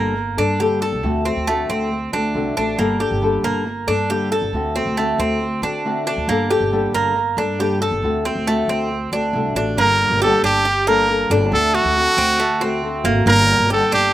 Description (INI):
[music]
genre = latin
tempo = 137 BPM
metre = 4/4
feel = straight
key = G harmonic minor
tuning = A4 = 440 Hz
[part]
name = nylon-string guitar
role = accompaniment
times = 0.0-14.1 s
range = D3 to A4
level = -22 LUFS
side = left 4 dB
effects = none
[part]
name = Cuban tres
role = arpeggios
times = 0.0-14.1 s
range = A3 to A4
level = -21 LUFS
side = right 4 dB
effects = slapback echo
[part]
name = upright bass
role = bass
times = 0.0-14.1 s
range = G1 to D3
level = -24 LUFS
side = equal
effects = none
[part]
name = bright trumpet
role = melody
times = 9.8-14.1 s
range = F#4 to Bb4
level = -16 LUFS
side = right 1 dB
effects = slapback echo
[sound]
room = little or no reverb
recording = recorded outdoors, with no room sound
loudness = -16 LUFS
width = side -13 dB against mid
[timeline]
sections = 0.0-9.8 A section; 9.8-14.1 B section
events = none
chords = 0.0 Gmadd9; 1.0 D7; 2.8 Gmadd9; 4.5 D7; 6.3 Gmadd9; 8.0 D7; 9.8 Gmadd9; 11.5 D7; 13.3 Gmadd9